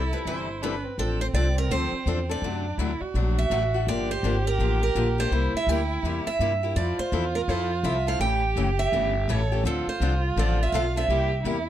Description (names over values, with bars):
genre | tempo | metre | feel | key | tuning
acoustic string swing (jazz manouche) | 166 BPM | 4/4 | swing 62% on 8ths | F major | A4 = 440 Hz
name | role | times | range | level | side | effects
picked steel-string acoustic guitar | melody | 0.0-11.7 s | A4 to G5 | -28 LUFS | right 4 dB | none
warm violin | second line | 0.0-11.7 s | C4 to A4 | -31 LUFS | right 4 dB | none
upright bass | bass | 0.0-11.7 s | Gb1 to G2 | -26 LUFS | left 1 dB | none
picked steel-string acoustic guitar | accompaniment | 0.1-11.6 s | C3 to A4 | -31 LUFS | left 5 dB | none
room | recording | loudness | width
light reverb | none | -23 LUFS | side -11 dB against mid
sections
1.0-11.7 A section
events
none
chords
0.0 C6; 1.0 F6; 2.4 D7; 3.9 Gm7; 5.3 C7; 6.8 Fmaj7; 8.2 A7; 9.6 Dm7; 11.1 C7